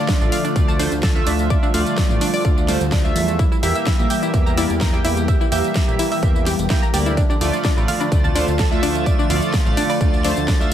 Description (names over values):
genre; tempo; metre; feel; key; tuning
progressive house; 127 BPM; 4/4; straight; D minor; A4 = 440 Hz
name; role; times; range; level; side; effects
lush unison pad; sustained chords; 0.0-10.7 s; D3 to G4; -26 LUFS; left 1 dB; chorus, phaser, sidechain pumping
analog pluck; arpeggios; 0.0-10.5 s; D4 to Bb5; -25 LUFS; left 1 dB; chorus, sidechain pumping, tape echo
chorused polysynth; stabs; 0.0-10.7 s; A3 to G5; -23 LUFS; right 2 dB; sidechain pumping, tape echo
big-room dance drum kit; drums; 0.1-10.7 s; hi-hat, ride cymbal, snare drum, tambourine; -27 LUFS; equal; none
electronic kick drum; drums; 0.1-10.6 s; none; -18 LUFS; equal; none
fat analog bass; bass; 0.2-10.7 s; E1 to E2; -23 LUFS; equal; sidechain pumping
drifting glass-harmonics texture; texture; 7.9-10.7 s; A6; -33 LUFS; right 1 dB; chorus, built-in reverb, sidechain pumping
woodblock and congas; percussion; 7.8-10.0 s; none; -31 LUFS; right 2 dB; none
room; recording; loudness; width
light reverb; none; -16 LUFS; side -10 dB against mid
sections
0.0-10.7 A section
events
none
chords
0.0 Dm; 3.4 Edim; 7.2 Dm